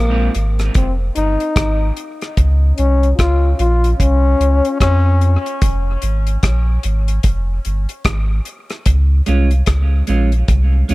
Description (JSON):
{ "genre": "dub reggae", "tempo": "74 BPM", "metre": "4/4", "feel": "swing 61% on 16ths", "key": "F minor", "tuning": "A4 = 439 Hz", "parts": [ { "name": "breathy trombone", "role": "second line", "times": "0.0-5.4 s", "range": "Bb3 to F4", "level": "-20 LUFS", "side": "left 3 dB", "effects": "high-pass filter, dub echo" }, { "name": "warm sub bass", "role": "bass", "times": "0.0-10.9 s", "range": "F1 to F2", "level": "-14 LUFS", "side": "equal", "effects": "none" }, { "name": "deep reggae drum kit", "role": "drums", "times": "0.3-10.9 s", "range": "hi-hat, kick drum, rim click", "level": "-18 LUFS", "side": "equal", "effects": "none" }, { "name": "semi-hollow electric guitar", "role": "accompaniment", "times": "9.3-10.9 s", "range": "Ab3 to F4", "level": "-24 LUFS", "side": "right 3 dB", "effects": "dub echo" } ], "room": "light reverb, small room ambience", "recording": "echo-heavy mix", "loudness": "-13 LUFS", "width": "side -20 dB against mid", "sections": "0.0-10.9 A section", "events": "break 0.0-8.9; filter sweep on trombone 2.4-10.9", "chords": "0.0 Fm; 2.4 Db; 5.6 Fm; 8.9 Db" }